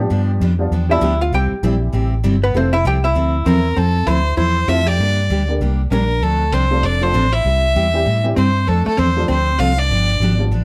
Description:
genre	country, western swing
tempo	196 BPM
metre	4/4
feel	swing 61% on 8ths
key	F major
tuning	A4 = 441 Hz
part	honky-tonk upright piano	accompaniment	0.0-10.5 s	D3 to G4	-26 LUFS	equal	none
part	vintage muted fingered electric bass	bass	0.0-10.6 s	F1 to A2	-20 LUFS	equal	none
part	picked steel-string acoustic guitar	accompaniment	0.1-10.6 s	C3 to A4	-25 LUFS	equal	none
part	hollow-body jazz guitar	second line	0.9-10.4 s	A3 to G5	-24 LUFS	equal	none
part	clear fiddle	melody	3.5-10.4 s	A4 to F5	-22 LUFS	equal	none
room	light reverb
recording	none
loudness	-17 LUFS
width	mono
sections	0.0-3.8 A section; 3.8-10.6 B section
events	hollow-body jazz guitar solo 0.0-3.8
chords	0.1 G7; 1.3 C; 2.5 Fmaj7; 5.0 Gm; 6.2 Dm7; 7.4 C; 8.7 F6; 9.9 G7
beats	| 0.10 0.41 0.71 1.02 | 1.32 1.63 1.94 2.24 | 2.55 2.85 3.16 3.46 | 3.77 4.07 4.38 4.69 | 4.99 5.30 5.61 5.91 | 6.22 6.53 6.83 7.14 | 7.45 7.75 8.06 8.37 | 8.67 8.98 9.29 9.59 | 9.90 10.21 10.51

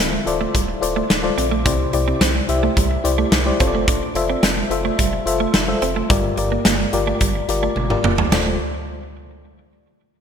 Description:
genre	1980s-style pop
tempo	108 BPM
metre	4/4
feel	straight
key	D minor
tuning	A4 = 440 Hz
part	FM electric piano with tremolo	accompaniment	0.0-8.6 s	D2 to E5	-21 LUFS	left 4 dB	none
part	clean electric guitar	riff	0.0-8.5 s	G3 to D4	-25 LUFS	right 7 dB	analog chorus, ping-pong delay
part	sub bass with octave	bass	0.0-8.6 s	D1 to C2	-25 LUFS	equal	none
part	big rock drum kit	drums	0.3-8.5 s	crash cymbal, hi-hat, kick drum, snare drum, toms	-20 LUFS	equal	gated reverb
room	moderate lush hall reverb, RT60 1.9 s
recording	bright 1980s-style digital production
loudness	-16 LUFS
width	side -7 dB against mid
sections	0.0-8.3 A section; 8.3-10.2 B section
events	drum fill 7.8-8.3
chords	0.0 Dm7; 1.7 Cadd9; 3.6 F6; 6.1 Gm7; 8.3 Dm7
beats	0.54 1.10 | 1.66 2.21 2.77 3.32 | 3.88 4.43 4.99 5.54 | 6.10 6.66 7.21 7.77 | 8.32

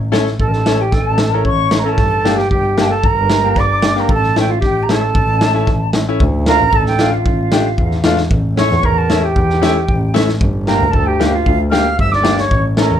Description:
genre	klezmer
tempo	114 BPM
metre	4/4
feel	straight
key	A phrygian dominant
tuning	A4 = 439 Hz
part	warm double bass	bass	0.0-13.0 s	G1 to E2	-17 LUFS	equal	none
part	bright upright piano	accompaniment	0.1-12.9 s	A3 to A4	-19 LUFS	left 4 dB	none
part	raw garage drum kit	drums	0.1-12.9 s	kick drum, snare drum	-18 LUFS	equal	none
part	mellow concert flute	melody	0.4-13.0 s	F5 to F6	-18 LUFS	right 2 dB	plate reverb
part	warm clarinet	second line	0.4-13.0 s	F4 to F5	-21 LUFS	right 2 dB	none
room	light reverb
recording	none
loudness	-12 LUFS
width	side -10 dB against mid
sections	0.0-6.2 A section; 6.2-13.0 B section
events	none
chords	0.0 A; 2.0 Gm; 4.1 A; 6.2 Dm; 8.3 A; 10.4 Gm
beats	0.40 0.93 1.46 | 1.98 2.51 3.04 3.56 | 4.09 4.62 5.15 5.67 | 6.20 6.73 7.25 7.78 | 8.31 8.84 9.36 9.89 | 10.41 10.94 11.47 11.99 | 12.52

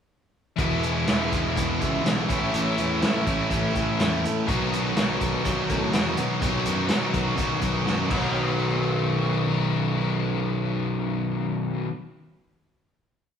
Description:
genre	classic rock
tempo	124 BPM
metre	4/4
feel	straight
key	B mixolydian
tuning	A4 = 441 Hz
part	distorted electric guitar	riff	0.6-11.9 s	A2 to E4	-27 LUFS	left 7 dB	overdrive
part	overdriven semi-hollow guitar	riff	0.6-11.9 s	E2 to B4	-27 LUFS	right 5 dB	none
part	fuzz fingered electric bass	bass	0.6-11.9 s	E1 to B2	-30 LUFS	left 1 dB	overdrive
part	vintage drum kit	drums	0.6-8.2 s	crash cymbal, hi-hat, kick drum, snare drum	-28 LUFS	equal	none
room	wet stone room reverb, RT60 1.2 s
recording	band playing live in one room, studio ambience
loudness	-22 LUFS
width	side -8 dB against mid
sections	0.6-8.3 verse; 8.3-12.2 final hit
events	drum fill 7.9-8.3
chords	0.6 E; 2.3 A; 4.5 B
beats	| 0.58 1.07 1.56 2.05 | 2.54 3.02 3.51 4.00 | 4.48 4.96 5.45 5.93 | 6.41 6.90 7.38 7.86 | 8.35 8.83 9.31 9.80 | 10.28 10.77 11.25 11.74

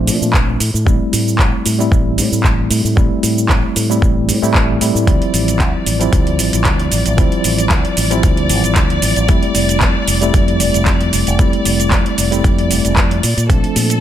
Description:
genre	nu-disco, nu disco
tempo	114 BPM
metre	4/4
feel	swing 54% on 16ths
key	F major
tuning	A4 = 436 Hz
part	tine electric piano	accompaniment	0.0-14.0 s	F3 to E4	-18 LUFS	equal	fast stereo tremolo, ping-pong delay
part	fingered electric bass with an envelope filter	bass	0.0-14.0 s	F1 to Bb2	-18 LUFS	equal	none
part	pop drum kit	drums	0.1-14.0 s	cabasa, handclaps, hi-hat	-19 LUFS	right 2 dB	none
part	electronic kick drum	drums	0.3-13.6 s	none	-14 LUFS	equal	none
part	warm symphonic violin section	sustained chords	5.1-14.0 s	A4 to D5	-22 LUFS	left 2 dB	sidechain pumping
room	little or no reverb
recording	none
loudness	-12 LUFS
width	side -11 dB against mid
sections	0.0-14.0 A section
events	none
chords	0.0 Bbmaj9; 0.6 Am7; 5.1 Dm11; 9.3 Fmaj9; 13.2 Bbmaj9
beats	0.34 | 0.86 1.39 1.92 2.44 | 2.97 3.50 4.02 4.55 | 5.08 5.60 6.13 6.66 | 7.18 7.71 8.23 8.76 | 9.29 9.81 10.34 10.87 | 11.39 11.92 12.44 12.97 | 13.50

